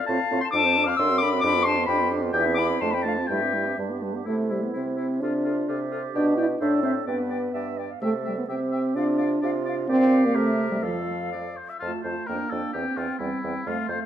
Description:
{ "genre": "quick classical-period movement for wind quintet", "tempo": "121-134 BPM", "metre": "2/4", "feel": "rubato", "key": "C major, F major from 9.9 s", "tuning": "A4 = 442 Hz", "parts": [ { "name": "bright concert flute", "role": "melody", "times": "0.0-14.1 s", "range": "A4 to D6", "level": "-32 LUFS", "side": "left 7 dB", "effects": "none" }, { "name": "warm oboe", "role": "second line", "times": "0.0-14.0 s", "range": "E4 to E6", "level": "-28 LUFS", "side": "left 4 dB", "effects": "none" }, { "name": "mellow French horn", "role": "accompaniment", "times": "0.1-14.1 s", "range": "F3 to F4", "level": "-26 LUFS", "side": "equal", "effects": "none" }, { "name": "warm clarinet", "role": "accompaniment", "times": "0.1-14.1 s", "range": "G3 to F5", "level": "-34 LUFS", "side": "right 9 dB", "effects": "none" }, { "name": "warm bassoon", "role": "bass", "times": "0.1-14.0 s", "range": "E2 to C3", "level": "-30 LUFS", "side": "right 2 dB", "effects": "none" } ], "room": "wet recital hall reverb, RT60 1.4 s", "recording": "none", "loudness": "-22 LUFS", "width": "side -10 dB against mid", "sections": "0.0-4.3 A section; 4.3-11.8 B section; 11.8-14.1 A section", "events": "none", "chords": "0.0 F/A; 0.5 Dm7/F; 1.0 D7/F#; 1.4 G7/F; 2.4 C/E; 2.8 Dm7/F; 3.3 C/G; 3.8 G; 4.3 C; 5.2 Dm7/C; 6.1 G/B; 6.6 Am; 7.1 G; 8.0 C; 9.0 Dm7/C; 9.9 Bb; 10.4 C7; 10.8 F; 12.3 Gm7/F; 12.7 C/E" }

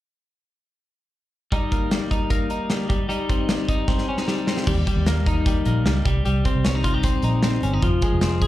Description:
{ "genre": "jangly indie pop", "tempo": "152 BPM", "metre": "4/4", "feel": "straight", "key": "Eb mixolydian", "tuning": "A4 = 440 Hz", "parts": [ { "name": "twelve-string electric guitar", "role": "arpeggios", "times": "1.5-8.5 s", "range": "F3 to Ab4", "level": "-24 LUFS", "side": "left 2 dB", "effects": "slapback echo" }, { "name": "modern studio drum kit", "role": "drums", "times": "1.5-8.5 s", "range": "crash cymbal, hi-hat, kick drum, snare drum", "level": "-23 LUFS", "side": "equal", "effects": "none" }, { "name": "vintage muted fingered electric bass", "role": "bass", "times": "4.7-8.5 s", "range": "F1 to Eb2", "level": "-22 LUFS", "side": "equal", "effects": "none" } ], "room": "light reverb", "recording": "live gig heard through the venue's PA, club reverb", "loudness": "-19 LUFS", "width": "side -14 dB against mid", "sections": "1.5-4.7 A section; 4.7-8.5 B section", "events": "drum fill 3.9-4.7", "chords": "1.5 Eb; 2.9 Cm; 4.7 Eb; 6.1 Cm; 7.8 Fm" }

